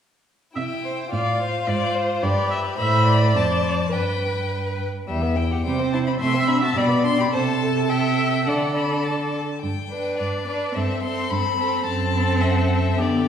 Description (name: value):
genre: quick classical-period movement for string quartet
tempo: 106 BPM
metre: 2/4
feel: straight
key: G major from 5.1 s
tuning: A4 = 439 Hz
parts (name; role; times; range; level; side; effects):
- rich violin; second line; 0.5-13.3 s; G3 to C5; -28 LUFS; left 2 dB; none
- rich violin; melody; 0.6-13.3 s; B4 to C6; -27 LUFS; left 6 dB; none
- rich viola; accompaniment; 0.6-13.3 s; B3 to E5; -25 LUFS; right 1 dB; none
- rich cello; bass; 0.6-13.3 s; E2 to D3; -23 LUFS; right 2 dB; none
room: wet recital hall reverb, RT60 1.6 s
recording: heard from further back in the room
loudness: -19 LUFS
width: side -8 dB against mid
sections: 0.6-9.6 A section; 9.6-13.3 B section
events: none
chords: 0.6 C; 1.1 F/A; 1.7 Ab6; 2.2 G; 2.8 Am; 3.4 Dm7/F; 3.9 G; 5.1 Em; 5.7 C; 6.2 D7/C; 6.8 G/B; 7.3 Am7/C; 8.5 D5; 9.6 G; 10.8 Am7/G; 11.9 F#m7b5